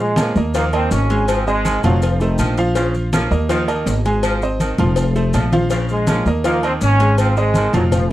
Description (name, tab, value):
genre	latin, salsa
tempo	163 BPM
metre	4/4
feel	straight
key	Bb minor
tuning	A4 = 440 Hz
part	clear trombone section	melody	0.0-2.6, 5.9-8.1 s	Eb3 to Db4	-20 LUFS	right 1 dB	none
part	bright grand piano	accompaniment	0.0-8.0 s	F3 to Ab5	-21 LUFS	right 1 dB	none
part	upright bass	bass	0.0-8.1 s	F1 to Bb2	-18 LUFS	equal	none
part	bright saxophone section	second line	0.2-8.0 s	Db3 to F3	-26 LUFS	equal	none
part	agogo bells and timbales	percussion	0.2-8.1 s	none	-29 LUFS	right 3 dB	none
part	congas	percussion	0.2-8.1 s	none	-23 LUFS	equal	none
part	cowbell	percussion	0.2-8.1 s	none	-26 LUFS	left 6 dB	none
part	maracas	percussion	0.2-8.1 s	none	-36 LUFS	left 4 dB	none
room	light reverb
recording	dry, close 1970s-style studio recording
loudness	-14 LUFS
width	side -14 dB against mid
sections	0.0-8.1 A section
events	none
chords	0.0 Bbm; 0.5 Ebsus2; 1.3 Ab; 2.0 F7; 2.8 Bbm; 3.5 Ebsus2; 4.2 Ab; 5.0 F; 5.7 Bbm; 6.4 Ebsus2; 7.2 Ab